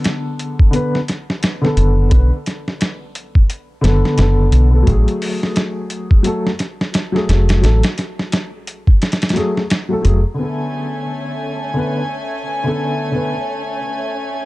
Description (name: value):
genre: trip hop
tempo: 87 BPM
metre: 4/4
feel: swing 59% on 16ths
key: unclear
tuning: A4 = 440 Hz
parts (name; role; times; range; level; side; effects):
- dark upright piano; accompaniment; 0.0-13.3 s; D3 to B4; -20 LUFS; left 1 dB; tremolo, vintage 12-bit sampler grit, tape echo
- dusty soul sampler-style drum kit; drums; 0.0-10.2 s; hi-hat, kick drum, snare drum; -16 LUFS; equal; none
- deep dub fingered electric bass; bass; 1.8-10.2 s; E#1 to B1; -12 LUFS; equal; none
- warm studio violin section; sustained chords; 10.4-14.5 s; A3 to G#5; -23 LUFS; equal; vintage 12-bit sampler grit
- wind-like tuned noise texture; texture; 10.4-14.5 s; C#4 to C#5; -30 LUFS; equal; built-in reverb
room: little or no reverb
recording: dark, warm production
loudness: -14 LUFS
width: side -19 dB against mid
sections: 0.0-10.4 A section; 10.4-14.5 B section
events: none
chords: 0.0 Bm7; 4.9 F#madd9; 10.4 Bm7